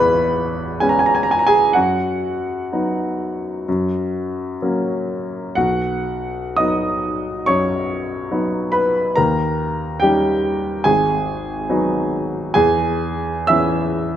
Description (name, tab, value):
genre	classical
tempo	56-72 BPM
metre	4/4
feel	rubato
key	B major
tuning	A4 = 440 Hz
part	clear grand piano	accompaniment	0.0-14.2 s	G#1 to E6	-17 LUFS	equal	none
room	moderate recital hall reverb, RT60 1.6 s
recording	none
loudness	-17 LUFS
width	side -10 dB against mid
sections	0.0-14.2 A section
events	none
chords	0.0 C#m7/E; 1.7 B/F#; 3.7 F#; 5.6 B; 9.2 D#7; 10.8 G#m7; 12.5 C#m7/E